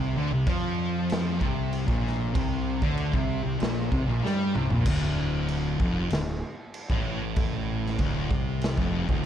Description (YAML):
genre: stoner and doom metal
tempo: 96 BPM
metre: 4/4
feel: straight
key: D minor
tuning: A4 = 441 Hz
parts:
  - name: fuzz guitar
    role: riff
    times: 0.0-4.8 s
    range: Bb2 to G3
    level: -32 LUFS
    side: equal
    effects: distortion
  - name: thick fuzz guitar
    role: riff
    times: 0.0-9.3 s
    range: D2 to G3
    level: -30 LUFS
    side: left 7 dB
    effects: distortion
  - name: thick fuzz guitar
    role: riff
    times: 0.0-9.3 s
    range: D2 to G3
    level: -31 LUFS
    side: right 9 dB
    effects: distortion
  - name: fuzz fingered electric bass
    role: bass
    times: 0.0-9.3 s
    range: D1 to G2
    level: -32 LUFS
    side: equal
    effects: overdrive
  - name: raw garage drum kit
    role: drums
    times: 0.5-9.2 s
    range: crash cymbal, kick drum, snare drum, toms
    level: -29 LUFS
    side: equal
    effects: none
room: studio ambience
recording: dark, warm production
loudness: -24 LUFS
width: side -10 dB against mid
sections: 0.0-4.9 A section; 4.9-9.3 B section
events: drum fill 4.2-4.9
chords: 0.0 C5; 4.9 Dm